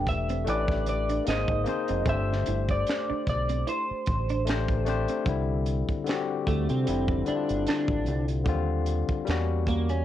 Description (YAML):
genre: R&B, neo-soul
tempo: 75 BPM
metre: 4/4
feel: swing 56% on 16ths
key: C major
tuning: A4 = 440 Hz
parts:
  - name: electric guitar through a small old amp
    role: melody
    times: 0.0-10.0 s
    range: A3 to E5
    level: -30 LUFS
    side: right 2 dB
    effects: analog chorus, cassette tape
  - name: vintage hollow-body jazz guitar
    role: second line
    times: 0.0-5.2 s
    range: C4 to E4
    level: -35 LUFS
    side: right 8 dB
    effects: none
  - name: barky tine electric piano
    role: accompaniment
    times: 0.0-10.0 s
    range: D3 to C5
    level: -30 LUFS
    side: left 7 dB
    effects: none
  - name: deep dub fingered electric bass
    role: bass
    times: 0.0-10.0 s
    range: E1 to C3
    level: -28 LUFS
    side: right 1 dB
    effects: none
  - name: tight funk drum kit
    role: drums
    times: 0.1-10.0 s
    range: finger snaps, hi-hat, kick drum, snare drum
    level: -32 LUFS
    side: right 1 dB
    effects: cassette tape
room: light reverb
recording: home recording on cassette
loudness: -25 LUFS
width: side -12 dB against mid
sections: 0.0-5.3 A section; 5.3-10.0 B section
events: none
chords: 0.5 A9sus4; 1.3 Abadd9; 2.1 Gsus24; 5.3 Cadd9; 6.9 F5; 8.5 Ebmaj7; 9.3 Edim7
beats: 0.46 1.26 | 2.06 2.86 3.66 4.46 | 5.26 6.06 6.86 7.66 | 8.46 9.26